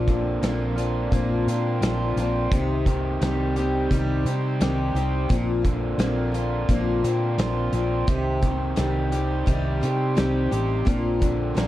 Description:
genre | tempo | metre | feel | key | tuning
folk rock and heartland rock | 86 BPM | 4/4 | straight | C minor | A4 = 440 Hz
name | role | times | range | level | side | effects
picked steel-string acoustic guitar | accompaniment | 0.0-11.7 s | Bb2 to G4 | -27 LUFS | left 4 dB | none
pedal harmonium | sustained chords | 0.0-11.7 s | C4 to C5 | -33 LUFS | right 3 dB | none
raw garage guitar | riff | 0.0-11.7 s | Bb2 to G4 | -30 LUFS | right 3 dB | overdrive
hollow-body short-scale fingered electric bass | bass | 0.0-11.7 s | A1 to C3 | -26 LUFS | equal | none
loose indie drum kit | drums | 0.1-11.7 s | hi-hat, kick drum, snare drum | -26 LUFS | equal | none
room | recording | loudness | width
moderate spring reverb, RT60 1.6 s, studio reverb | dark, warm production | -21 LUFS | side -14 dB against mid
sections
0.0-11.7 A section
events
none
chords
0.0 Bbadd9; 2.5 Cm; 5.3 Bbadd9; 8.1 Cm; 10.9 Bbadd9

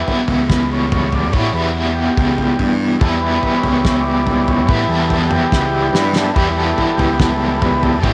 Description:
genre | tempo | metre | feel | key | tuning
psychedelic rock | 72 BPM | 4/4 | straight | E dorian | A4 = 440 Hz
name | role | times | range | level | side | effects
overdriven combo organ | sustained chords | 0.0-8.1 s | E3 to D5 | -22 LUFS | equal | none
overdriven electric guitar | riff | 0.0-8.1 s | E2 to E4 | -20 LUFS | equal | tremolo
cloth-damped thuddy drum kit | drums | 0.1-8.1 s | kick drum, snare drum, toms | -21 LUFS | equal | none
fuzz picked electric bass | bass | 0.3-8.1 s | C#2 to A2 | -23 LUFS | equal | overdrive
room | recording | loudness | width
light reverb, small room ambience | none | -16 LUFS | mono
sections
0.0-8.1 A section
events
transistor combo organ solo 0.0-8.1; drum fill 5.5-6.4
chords
0.0 Em

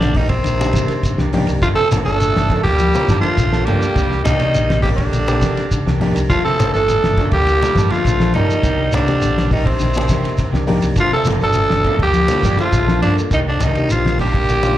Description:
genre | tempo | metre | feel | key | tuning
afrobeat | 103 BPM | 4/4 | straight | G minor | A4 = 440 Hz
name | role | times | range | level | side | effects
raspy tenor saxophone | melody | 0.0-14.8 s | C4 to A4 | -19 LUFS | equal | slapback echo
mellow trombone section | second line | 0.0-14.8 s | C3 to A3 | -27 LUFS | equal | slapback echo
raspy alto saxophone | second line | 0.0-14.8 s | Eb3 to D4 | -29 LUFS | right 4 dB | slapback echo
barky reed electric piano | accompaniment | 0.0-14.8 s | Bb2 to D5 | -27 LUFS | left 2 dB | overdrive, fast tremolo, slapback echo
clean electric guitar | arpeggios | 0.0-14.7 s | C3 to G3 | -24 LUFS | left 4 dB | none
fingered electric bass | bass | 0.0-14.8 s | G1 to C3 | -19 LUFS | equal | none
damped 70s drum kit | drums | 0.0-14.6 s | hi-hat, kick drum, ride cymbal, snare drum | -22 LUFS | equal | none
congas | percussion | 0.0-14.8 s | none | -24 LUFS | left 1 dB | slapback echo
electric guitar at the edge of break-up | stabs | 0.2-14.5 s | Eb3 to A4 | -26 LUFS | right 5 dB | analog chorus, slapback echo
shekere | percussion | 0.2-14.8 s | none | -24 LUFS | right 1 dB | none
room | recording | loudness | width
light reverb, small room reverb | live gig heard through the venue's PA, club reverb | -14 LUFS | side -13 dB against mid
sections
0.0-14.8 A section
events
none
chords
0.0 Cm9; 1.6 Gm9; 4.0 Cm9; 6.3 Gm9; 8.6 Cm9; 11.0 Gm9; 13.3 Cm9

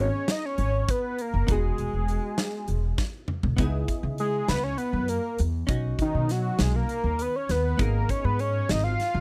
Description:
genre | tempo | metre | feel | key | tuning
progressive instrumental, band music in an uneven meter | 200 BPM (eighths) | 7/8 | straight | C# dorian | A4 = 441 Hz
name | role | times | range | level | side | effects
fat analog lead | melody | 0.0-9.2 s | D#4 to E#5 | -30 LUFS | equal | chorus, phaser
hollow-body jazz guitar | accompaniment | 0.0-9.2 s | B3 to A#4 | -39 LUFS | equal | double-tracked
upright bass | bass | 0.0-9.2 s | E1 to C#3 | -29 LUFS | equal | none
big rock drum kit | drums | 0.3-9.1 s | hi-hat, kick drum, snare drum, toms | -32 LUFS | equal | none
room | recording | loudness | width
little or no reverb | dry, close 1970s-style studio recording | -26 LUFS | mono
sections
0.0-3.6 A section; 3.6-9.2 B section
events
drum fill 3.0-3.6; analog synth lead solo 3.6-9.2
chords
0.0 G#madd9; 1.5 Emaj7; 3.6 C#m7; 5.7 B; 7.8 G#madd9

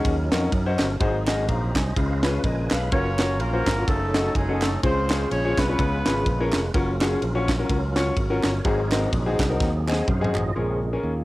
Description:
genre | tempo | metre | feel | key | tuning
uptempo gospel | 126 BPM | 4/4 | swing 57% on 8ths | Db major | A4 = 439 Hz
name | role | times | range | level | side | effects
clear upright piano | accompaniment | 0.0-11.2 s | Ab2 to Bb5 | -26 LUFS | left 2 dB | cassette tape
tonewheel organ | sustained chords | 0.0-10.9 s | Db3 to Cb6 | -32 LUFS | right 2 dB | slow rotary speaker, overdrive, chorus vibrato, cassette tape
modern bright fingered electric bass | bass | 0.1-11.2 s | F1 to Gb2 | -26 LUFS | equal | none
crisp fusion drum kit | drums | 0.1-10.4 s | kick drum, ride cymbal, snare drum, toms | -26 LUFS | equal | cassette tape
group handclap | percussion | 0.3-10.4 s | none | -34 LUFS | right 3 dB | none
dark horn section | melody | 2.9-6.5 s | Ab3 to Db5 | -27 LUFS | equal | cassette tape
dark French horn section | sustained chords | 10.6-11.2 s | Db3 to F4 | -37 LUFS | right 2 dB | none
room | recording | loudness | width
light reverb, studio ambience | home recording on cassette | -20 LUFS | side -18 dB against mid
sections
0.0-10.6 A section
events
tonewheel organ fill 1.5-2.9, 9.6-10.6; drum fill 9.6-10.6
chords
0.0 Ebm7; 1.0 Ab7; 2.0 Db7; 2.9 Gbmaj7; 3.9 Gbm6; 4.8 Dbmaj7; 5.8 Db7; 6.7 Gbmaj7; 8.7 Ab7; 10.6 Bbm7

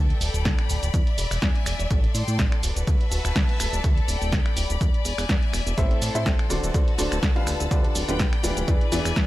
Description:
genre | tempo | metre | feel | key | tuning
piano house | 124 BPM | 4/4 | swing 55% on 16ths | unclear | A4 = 440 Hz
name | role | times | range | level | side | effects
fat analog bass | bass | 0.0-9.2 s | D1 to A2 | -27 LUFS | equal | sidechain pumping
clear studio string section | texture | 0.0-9.3 s | F#4 to E6 | -31 LUFS | left 3 dB | sidechain pumping
punchy analog drum machine | drums | 0.1-9.3 s | finger snaps, hi-hat, shaker, snare drum | -29 LUFS | equal | none
electronic kick drum | drums | 0.5-9.3 s | none | -23 LUFS | equal | none
clear upright piano | riff | 5.8-9.1 s | A2 to F5 | -27 LUFS | equal | sidechain pumping, digital delay
room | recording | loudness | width
little or no reverb | none | -21 LUFS | side -16 dB against mid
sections
0.0-9.3 A section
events
none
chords
0.0 G/D; 0.9 E7; 1.9 Am; 2.6 D; 4.8 E7; 5.8 Am; 6.5 D7; 7.5 G7/D; 8.7 E7

